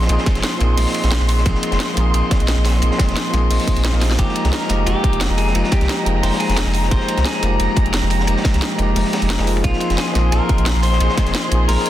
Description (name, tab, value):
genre	liquid drum and bass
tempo	176 BPM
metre	4/4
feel	swing 53% on 16ths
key	F minor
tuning	A4 = 440 Hz
part	tine electric piano	accompaniment	0.0-11.9 s	F3 to G5	-22 LUFS	left 1 dB	ping-pong delay
part	dark chamber string section	sustained chords	0.0-11.9 s	Ab3 to C6	-24 LUFS	left 1 dB	vintage 12-bit sampler grit, sidechain pumping
part	warm sub bass	bass	0.0-11.8 s	F1 to C2	-18 LUFS	equal	none
part	crunchy breakbeat drum kit	drums	0.0-11.9 s	hi-hat, ride cymbal, snare drum	-28 LUFS	equal	high-pass filter on cymbals, high-pass filter on hats, high-pass filter on snare, high-pass filter on room
part	garage drum kit	drums	0.1-11.9 s	hi-hat, snare drum	-25 LUFS	equal	none
part	electronic kick drum	drums	0.3-11.2 s	none	-17 LUFS	equal	none
part	clean electric guitar	melody	4.2-7.6, 9.6-11.9 s	F4 to C5	-25 LUFS	left 1 dB	spring reverb, tape echo
room	light reverb, small room reverb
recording	dense, heavily limited modern master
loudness	-15 LUFS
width	side -13 dB against mid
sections	0.0-11.9 A section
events	drum fill 4.0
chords	0.0 Fm11